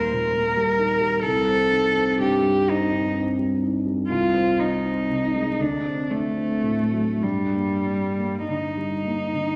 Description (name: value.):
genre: classical, romantic duo for cello and grand piano.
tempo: 31-47 BPM (dotted quarters).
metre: 6/8.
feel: rubato.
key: G minor.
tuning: A4 = 440 Hz.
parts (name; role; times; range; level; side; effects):
rich cello; melody; 0.0-9.6 s; G3 to Bb4; -25 LUFS; equal; none.
dark concert grand piano; accompaniment; 0.0-9.6 s; C2 to Eb4; -27 LUFS; equal; none.
room: wet concert hall reverb, RT60 1.7 s.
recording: vinyl crackle.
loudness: -23 LUFS.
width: mono.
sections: 0.0-9.6 A section.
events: none.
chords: 0.0 Eb; 1.2 Cm; 4.1 Ab/C; 5.6 D7; 7.2 Gm.